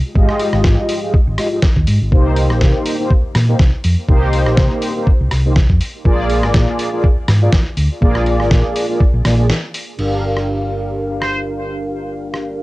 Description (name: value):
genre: nu-disco, nu disco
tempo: 122 BPM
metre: 4/4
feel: swing 55% on 16ths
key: C minor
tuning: A4 = 438 Hz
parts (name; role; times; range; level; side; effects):
- mellow synth brass; accompaniment; 0.1-12.6 s; Ab3 to F5; -19 LUFS; equal; chorus, cassette tape, tape echo
- hollow-body short-scale fingered electric bass; bass; 0.2-12.6 s; G1 to C3; -16 LUFS; equal; tube saturation, sidechain pumping
- electronic kick drum; drums; 0.2-9.1 s; none; -13 LUFS; equal; studio reverb, cassette tape
- dusty soul sampler-style drum kit; drums; 0.3-12.4 s; crash cymbal, hi-hat, rim click, snare drum; -22 LUFS; equal; studio reverb, cassette tape
- muted trumpet section; melody; 11.2-11.4 s; C5; -23 LUFS; equal; cassette tape, analog delay
room: light reverb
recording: home recording on cassette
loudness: -13 LUFS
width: side -19 dB against mid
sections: 0.0-10.0 A section; 10.0-12.6 B section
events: break 9.5-10.0; band accent 9.5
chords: 0.0 Fm9/Ab; 2.1 Cm7; 6.1 Bb7; 10.0 Gm7